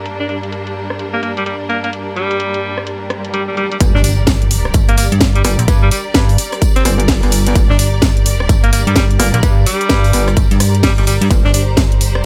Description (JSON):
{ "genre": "bass house", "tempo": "128 BPM", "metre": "4/4", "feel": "swing 61% on 16ths", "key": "G minor", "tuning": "A4 = 440 Hz", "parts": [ { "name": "bright symphonic string section", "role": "sustained chords", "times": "0.0-12.3 s", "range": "G2 to D5", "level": "-28 LUFS", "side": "equal", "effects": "sidechain pumping" }, { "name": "granular cloud pad", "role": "texture", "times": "0.0-12.3 s", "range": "G4 to Bb5", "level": "-30 LUFS", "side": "equal", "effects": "built-in reverb, sidechain pumping" }, { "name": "house drum kit", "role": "drums", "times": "0.1-12.2 s", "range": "hi-hat, rim click, snare drum", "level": "-21 LUFS", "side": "equal", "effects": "overdrive, low-pass filter on snare, low-pass filter on hats, low-pass filter on room" }, { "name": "bright alto saxophone", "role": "melody", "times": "0.2-11.6 s", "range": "G3 to D4", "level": "-22 LUFS", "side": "equal", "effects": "tape echo" }, { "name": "swell and impact", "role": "sound effects", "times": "3.0-5.7 s", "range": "none", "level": "-28 LUFS", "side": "equal", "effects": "none" }, { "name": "metallic wobble bass", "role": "bass", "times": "3.8-11.4 s", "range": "G1 to G2", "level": "-17 LUFS", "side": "equal", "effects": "chorus, overdrive, sidechain pumping" }, { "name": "compact cocktail drum kit", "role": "drums", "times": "3.8-12.1 s", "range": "hi-hat, snare drum, tambourine", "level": "-31 LUFS", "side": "equal", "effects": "sidechain pumping on hats, high-pass filter on hats, high-pass filter on snare, sidechain pumping on perc, high-pass filter on perc, high-pass filter on room" }, { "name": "electronic kick drum", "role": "drums", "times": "3.8-11.9 s", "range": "none", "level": "-16 LUFS", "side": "equal", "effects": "none" }, { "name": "metallic FM bass", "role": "bass", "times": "3.9-12.2 s", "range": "G1 to G2", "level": "-17 LUFS", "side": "equal", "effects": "tube saturation, sidechain pumping" } ], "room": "studio reverb", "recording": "none", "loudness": "-14 LUFS", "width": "mono", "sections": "0.0-3.8 A section; 3.8-12.3 B section", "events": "swell 3.0-3.8; drop 3.8-12.3; impact 3.8-5.7", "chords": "0.0 Gm" }